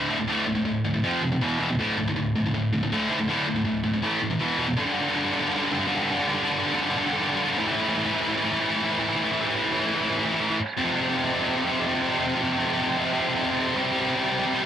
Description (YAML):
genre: metal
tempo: 160 BPM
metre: 4/4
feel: straight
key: unclear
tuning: A4 = 435 Hz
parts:
  - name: high-gain distorted guitar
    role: solo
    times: 0.0-14.7 s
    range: D2 to A3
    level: -22 LUFS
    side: equal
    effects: distortion, cassette tape, tape echo
room: light reverb, digital ambience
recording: home recording on cassette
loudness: -22 LUFS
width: side -9 dB against mid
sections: 0.0-4.8 A section; 4.8-14.7 B section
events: none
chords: 0.0 D5; 1.0 F5; 1.4 E5; 1.8 D5; 4.0 A5; 4.4 E5; 4.8 G5; 7.6 A5; 10.8 F5; 13.8 C5